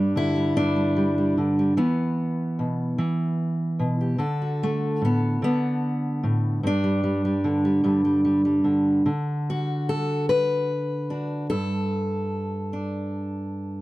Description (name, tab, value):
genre	folk, solo fingerstyle acoustic guitar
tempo	49 BPM (dotted quarters)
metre	6/8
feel	straight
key	G major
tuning	A4 = 440 Hz
part	fingerpicked steel-string acoustic guitar	solo	0.0-13.8 s	G2 to B4	-22 LUFS	equal	none
room	little or no reverb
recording	dry, close 1970s-style studio recording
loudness	-22 LUFS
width	side -18 dB against mid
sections	0.0-9.1 A section; 9.1-13.8 B section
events	none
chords	0.0 G5; 1.8 E5; 4.2 D; 6.6 Gsus2; 9.1 D; 11.5 Gsus2